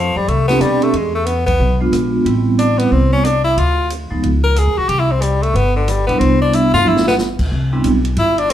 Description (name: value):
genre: jazz, small-group swing and bop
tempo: 182 BPM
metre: 4/4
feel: swing 63% on 8ths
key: C major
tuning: A4 = 445 Hz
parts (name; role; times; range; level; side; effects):
- edgy tenor saxophone; melody; 0.0-8.5 s; D3 to Bb4; -16 LUFS; left 2 dB; plate reverb
- upright bass; bass; 0.0-8.5 s; G1 to B2; -17 LUFS; equal; none
- vintage drum kit; drums; 0.3-8.5 s; crash cymbal, hi-hat, kick drum, ride cymbal, rim click, snare drum, toms; -25 LUFS; right 1 dB; none
- vibraphone with medium hard mallets; accompaniment; 0.5-7.8 s; F3 to G4; -17 LUFS; right 2 dB; none
room: wet club reverb, RT60 0.8 s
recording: heard from further back in the room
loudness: -13 LUFS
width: side -11 dB against mid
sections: 0.0-7.5 A section; 7.5-8.5 B section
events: band accent 1.4; drum fill 6.9-7.2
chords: 0.0 F69; 0.9 E7b9; 2.3 Am7; 3.6 Dm; 4.2 Dbsus2; 4.9 Cmaj9; 7.5 Cmaj7